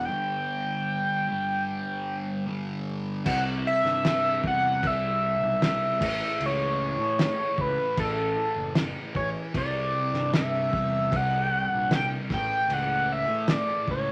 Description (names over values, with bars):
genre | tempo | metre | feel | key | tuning
psychedelic rock | 76 BPM | 4/4 | straight | unclear | A4 = 440 Hz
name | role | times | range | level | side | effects
sync lead | melody | 0.0-14.1 s | A4 to G5 | -29 LUFS | equal | chorus
thick fuzz guitar | riff | 0.0-14.1 s | G2 to C4 | -34 LUFS | equal | distortion, phaser
fuzz fingered electric bass | bass | 0.0-14.1 s | F#1 to A2 | -38 LUFS | equal | overdrive
cloth-damped thuddy drum kit | drums | 3.3-14.1 s | crash cymbal, kick drum, snare drum | -33 LUFS | equal | none
room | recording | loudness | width
moderate studio reverb, RT60 0.5 s | vinyl crackle | -27 LUFS | mono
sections
0.0-3.3 A section; 3.3-14.1 B section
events
none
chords
0.1 G5; 3.3 C; 6.0 A; 9.5 Cadd9; 12.3 A